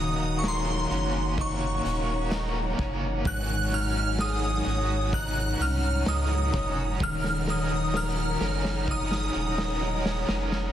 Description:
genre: dream pop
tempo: 64 BPM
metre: 4/4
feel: straight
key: Eb minor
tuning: A4 = 440 Hz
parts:
  - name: shimmering bell with halo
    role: melody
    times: 0.0-10.3 s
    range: C6 to Gb6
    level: -32 LUFS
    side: equal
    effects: ensemble chorus, phaser, tape echo
  - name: raw garage guitar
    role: accompaniment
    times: 0.0-10.7 s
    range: Ab2 to Bb4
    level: -35 LUFS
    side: right 2 dB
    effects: overdrive, tremolo, wide subtle chorus
  - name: percussive tonewheel organ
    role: sustained chords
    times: 0.0-10.7 s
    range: Eb4 to Bb5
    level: -34 LUFS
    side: right 1 dB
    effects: fast rotary speaker
  - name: electric guitar at the edge of break-up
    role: arpeggios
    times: 0.0-10.7 s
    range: Ab2 to Bb4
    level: -33 LUFS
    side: left 5 dB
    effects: analog chorus, tape echo
  - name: warm sub bass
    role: bass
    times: 0.0-10.7 s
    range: Eb1 to Db2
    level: -30 LUFS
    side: equal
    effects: none
  - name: vibraphone with medium mallets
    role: texture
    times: 0.0-10.7 s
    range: Db4 to Gb4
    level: -43 LUFS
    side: right 2 dB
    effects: none
  - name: raw garage drum kit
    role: drums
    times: 0.4-10.7 s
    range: hi-hat, kick drum, snare drum, tambourine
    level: -33 LUFS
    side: equal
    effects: none
room: light reverb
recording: dense, heavily limited modern master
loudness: -24 LUFS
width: side -11 dB against mid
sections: 0.0-10.7 A section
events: drum fill 7.0-10.7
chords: 0.0 Ebm7; 3.3 Ab7sus4; 7.0 Ebm7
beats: 0.44 1.38 2.32 | 3.25 4.19 5.13 6.07 | 7.00 7.94 8.88 9.82

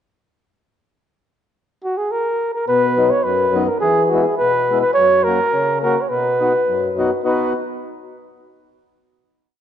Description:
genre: alpine folk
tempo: 105 BPM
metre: 2/4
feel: straight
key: B major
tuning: A4 = 441 Hz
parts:
  - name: mellow flugelhorn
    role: melody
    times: 1.8-7.5 s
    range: F#4 to C#5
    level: -16 LUFS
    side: right 1 dB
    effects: none
  - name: mellow accordion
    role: accompaniment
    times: 2.7-7.5 s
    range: F#2 to F#4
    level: -20 LUFS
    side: left 3 dB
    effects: none
room: wet concert hall reverb, RT60 2.0 s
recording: dark, warm production, nothing above 10.5 kHz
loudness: -15 LUFS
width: side -9 dB against mid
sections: 1.5-2.7 pickup bar; 2.7-7.3 A section; 7.3-8.4 final chord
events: none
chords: 1.5 N.C.; 2.7 B; 3.8 E; 5.0 F#; 6.1 B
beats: | 1.53 2.11 | 2.68 3.25 | 3.82 4.39 | 4.96 5.53 | 6.10 6.67 | 7.25

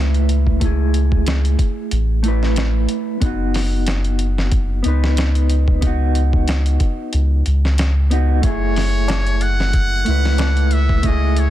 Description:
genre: trip hop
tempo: 92 BPM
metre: 4/4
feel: swing 55% on 16ths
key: F# dorian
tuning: A4 = 440 Hz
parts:
  - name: mellow electric guitar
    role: accompaniment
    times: 0.0-11.5 s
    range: A3 to B4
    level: -22 LUFS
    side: right 1 dB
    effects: tremolo, vintage 12-bit sampler grit
  - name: soft dub sub bass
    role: bass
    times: 0.0-11.5 s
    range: F#1 to C#2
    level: -16 LUFS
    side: equal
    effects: none
  - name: dusty soul sampler-style drum kit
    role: drums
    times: 0.1-11.5 s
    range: hi-hat, kick drum, snare drum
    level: -21 LUFS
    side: equal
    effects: none
  - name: trumpet with metal mute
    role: melody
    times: 8.5-11.5 s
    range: C#5 to F#5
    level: -23 LUFS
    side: equal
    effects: vintage 12-bit sampler grit, tape echo
  - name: tabla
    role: percussion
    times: 9.1-10.5 s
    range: none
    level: -32 LUFS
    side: left 4 dB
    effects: none
room: little or no reverb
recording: dense, heavily limited modern master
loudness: -15 LUFS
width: side -13 dB against mid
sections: 0.0-11.5 A section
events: none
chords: 0.0 F#m7 (rootless); 3.2 Badd9/F#; 8.4 F#m7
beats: | 0.61 1.26 1.91 2.57 | 3.22 3.87 4.52 5.17 | 5.83 6.48 7.13 7.78 | 8.44 9.09 9.74 10.39 | 11.04

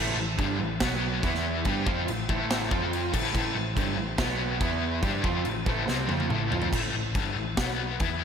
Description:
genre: hard rock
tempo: 142 BPM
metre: 4/4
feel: straight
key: A minor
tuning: A4 = 440 Hz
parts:
  - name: overdriven tonewheel organ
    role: sustained chords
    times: 0.0-8.2 s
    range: E4 to C6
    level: -39 LUFS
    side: equal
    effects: slow rotary speaker, chorus vibrato
  - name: cranked stack guitar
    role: riff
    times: 0.0-8.2 s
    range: G2 to G4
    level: -31 LUFS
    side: left 10 dB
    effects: overdrive, harmonic tremolo
  - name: crunchy overdriven guitar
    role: riff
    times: 0.0-6.7 s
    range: G2 to G4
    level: -31 LUFS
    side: right 9 dB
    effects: none
  - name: hollow-body short-scale picked electric bass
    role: bass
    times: 0.0-8.2 s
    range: G1 to G2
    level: -33 LUFS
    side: equal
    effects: none
  - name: big rock drum kit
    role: drums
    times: 0.4-8.1 s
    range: crash cymbal, kick drum, snare drum, toms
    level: -30 LUFS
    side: equal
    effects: none
room: moderate lush hall reverb, RT60 1.7 s, small room reverb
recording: big arena sound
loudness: -25 LUFS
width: side -7 dB against mid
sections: 0.0-6.7 A section; 6.7-8.2 B section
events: drum fill 5.9-6.7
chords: 0.0 Am; 0.8 B5; 1.2 E5; 1.7 Am; 2.7 F5; 3.1 Am; 4.2 B5; 4.6 E5; 5.0 Am; 7.6 B5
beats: 0.38 0.81 1.23 | 1.65 2.08 2.50 2.92 | 3.35 3.77 4.19 4.62 | 5.04 5.46 5.89 6.31 | 6.74 7.16 7.58 8.01

